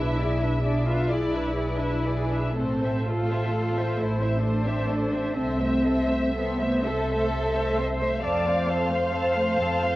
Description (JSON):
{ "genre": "classical, slow romantic movement for string orchestra", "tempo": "37-45 BPM (dotted quarters)", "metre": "6/8", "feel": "rubato", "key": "A minor", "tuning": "A4 = 440 Hz", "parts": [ { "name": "muted studio violin section", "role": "melody", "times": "0.0-10.0 s", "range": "C5 to A5", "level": "-35 LUFS", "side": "left 3 dB", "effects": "none" }, { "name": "muted studio violin section", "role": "second line", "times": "0.0-10.0 s", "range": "G#4 to F5", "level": "-32 LUFS", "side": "left 1 dB", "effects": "none" }, { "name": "muted studio viola section", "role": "accompaniment", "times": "0.0-10.0 s", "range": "A3 to C5", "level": "-29 LUFS", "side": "equal", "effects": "none" }, { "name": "muted studio cello section", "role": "bass", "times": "0.0-10.0 s", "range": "B3 to D5", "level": "-27 LUFS", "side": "equal", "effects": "none" }, { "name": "muted studio double bass section", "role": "bass", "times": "0.0-10.0 s", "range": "A1 to F2", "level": "-28 LUFS", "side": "right 1 dB", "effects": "none" } ], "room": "moderate scoring stage reverb, RT60 1.7 s", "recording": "worn, warbling old tape, cassette tape, warbly pitch drift", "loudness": "-22 LUFS", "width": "side -17 dB against mid", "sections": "0.0-10.0 A section", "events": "none", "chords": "0.0 E7/B; 2.6 Am; 5.4 Am/C; 8.2 F" }